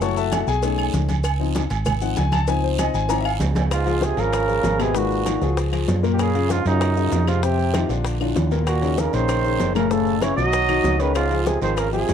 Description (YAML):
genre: Afro-Cuban jazz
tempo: 194 BPM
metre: 4/4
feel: straight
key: Db major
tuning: A4 = 441 Hz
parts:
  - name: warm baby grand piano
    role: accompaniment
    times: 0.0-12.1 s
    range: A2 to Db6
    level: -24 LUFS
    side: left 11 dB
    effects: none
  - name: hollow-body short-scale fingered electric bass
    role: bass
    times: 0.0-12.1 s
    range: F1 to Gb2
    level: -23 LUFS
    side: right 1 dB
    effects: none
  - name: congas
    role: percussion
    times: 0.0-12.1 s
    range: none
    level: -29 LUFS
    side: left 1 dB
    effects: none
  - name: cowbell and bongos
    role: percussion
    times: 0.0-12.1 s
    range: none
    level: -30 LUFS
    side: left 5 dB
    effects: none
  - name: guiro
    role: percussion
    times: 0.0-12.1 s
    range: none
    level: -39 LUFS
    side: right 15 dB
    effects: none
  - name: maracas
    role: percussion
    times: 0.0-12.1 s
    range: none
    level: -41 LUFS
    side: left 15 dB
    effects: none
  - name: agogo bells and timbales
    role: percussion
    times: 0.3-12.1 s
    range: none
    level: -31 LUFS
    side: right 9 dB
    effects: none
  - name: claves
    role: percussion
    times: 0.3-11.9 s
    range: none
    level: -36 LUFS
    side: left 14 dB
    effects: none
  - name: dark trumpet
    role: melody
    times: 3.7-12.1 s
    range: Eb4 to Eb5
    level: -24 LUFS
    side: right 4 dB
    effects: none
  - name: bright trombone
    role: second line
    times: 3.7-12.1 s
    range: Gb2 to Gb3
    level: -27 LUFS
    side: right 9 dB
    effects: none
room: small room ambience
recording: dry, close 1970s-style studio recording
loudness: -18 LUFS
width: side -8 dB against mid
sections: 0.0-3.7 A section; 3.7-12.1 B section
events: grand piano solo 0.0-3.7; drum fill 3.1-3.7, 8.2-8.7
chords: 0.0 Gbm7; 0.6 Cb9; 1.2 Dbmaj7; 3.7 Db; 5.0 Abm9; 5.6 Db; 6.2 Gbmaj9; 7.4 Fsus2; 8.1 Bb; 8.7 Ebm7; 9.9 Gbm7; 10.5 Cbadd9; 11.2 Dbmaj7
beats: | 0.02 0.32 0.63 0.94 | 1.25 1.55 1.86 2.17 | 2.48 2.79 3.10 3.40 | 3.71 4.02 4.33 4.64 | 4.95 5.26 5.57 5.88 | 6.19 6.50 6.81 7.12 | 7.43 7.74 8.05 8.36 | 8.67 8.98 9.29 9.60 | 9.91 10.22 10.53 10.84 | 11.15 11.46 11.77 12.08